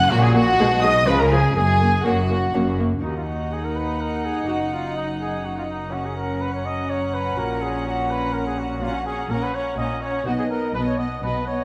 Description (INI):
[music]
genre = classical, baroque-style concerto movement with solo episodes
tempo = 124 BPM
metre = 3/4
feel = straight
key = F# major, Eb minor from 3.0 s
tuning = A4 = 440 Hz
[part]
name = clear trumpet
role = melody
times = 0.0-11.6 s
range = Eb4 to F#5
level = -28 LUFS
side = equal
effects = none
[part]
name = rich chamber violin section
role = melody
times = 0.0-11.6 s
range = F#5 to D#6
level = -34 LUFS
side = equal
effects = none
[part]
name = lute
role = accompaniment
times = 0.0-11.6 s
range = Eb2 to G#4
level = -34 LUFS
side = equal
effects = none
[part]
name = dark chamber double bass section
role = bass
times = 0.0-11.6 s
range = F#1 to Eb2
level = -30 LUFS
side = equal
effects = none
[part]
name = rich symphonic cello section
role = bass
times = 0.0-11.6 s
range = Eb2 to C#3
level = -30 LUFS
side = equal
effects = none
[part]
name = rich chamber violin section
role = second line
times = 0.1-11.6 s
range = F#4 to Gb5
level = -31 LUFS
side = equal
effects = none
[part]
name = rich chamber viola section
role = accompaniment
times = 0.1-11.6 s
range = E#3 to Eb4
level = -29 LUFS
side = equal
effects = none
[sound]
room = wet recital hall reverb, RT60 1.4 s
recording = none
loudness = -22 LUFS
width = mono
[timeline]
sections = 0.0-3.0 A section; 3.0-11.6 B section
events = none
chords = 0.1 F#/A#; 0.6 G#m7/B; 1.1 C#; 1.6 F#; 3.0 Ebm; 4.5 Ebm/Gb; 5.9 Gb; 7.4 Gb/Bb; 10.3 B